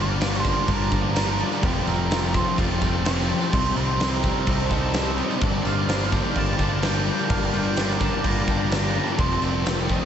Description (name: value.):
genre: rock, shoegaze and dream pop.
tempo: 127 BPM.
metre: 4/4.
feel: straight.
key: G minor.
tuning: A4 = 440 Hz.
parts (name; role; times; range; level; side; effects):
octave-fuzz lead guitar; melody; 0.0-10.1 s; G4 to Bb5; -30 LUFS; right 3 dB; distortion, analog delay.
shimmering ambient pad; sustained chords; 0.0-10.1 s; Eb4 to Bb5; -34 LUFS; equal; chorus, built-in reverb.
twangy electric guitar; arpeggios; 0.0-10.1 s; F3 to F4; -35 LUFS; left 2 dB; none.
biting overdriven guitar; riff; 0.0-10.1 s; F2 to Eb4; -29 LUFS; right 6 dB; reverse reverb.
overdriven semi-hollow guitar; riff; 0.0-10.1 s; F2 to Eb4; -32 LUFS; equal; none.
thick fuzz guitar; riff; 0.0-10.1 s; F2 to C4; -28 LUFS; left 6 dB; distortion, wide subtle chorus.
modern bright picked electric bass; bass; 0.0-10.0 s; F1 to C2; -27 LUFS; equal; none.
huge arena drum kit; drums; 0.2-10.0 s; crash cymbal, kick drum, snare drum; -26 LUFS; equal; none.
tambourine; percussion; 0.2-10.1 s; none; -44 LUFS; right 11 dB; none.
room: wet huge ambient reverb, RT60 8.0 s.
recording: dreamy mix soaked in reverb, nothing above 8.0 kHz.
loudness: -20 LUFS.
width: side -9 dB against mid.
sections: 0.0-10.1 A section.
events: none.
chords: 0.0 Gm7; 1.6 Fadd9; 3.5 Cmadd9; 5.4 Gm7; 9.2 Fadd9.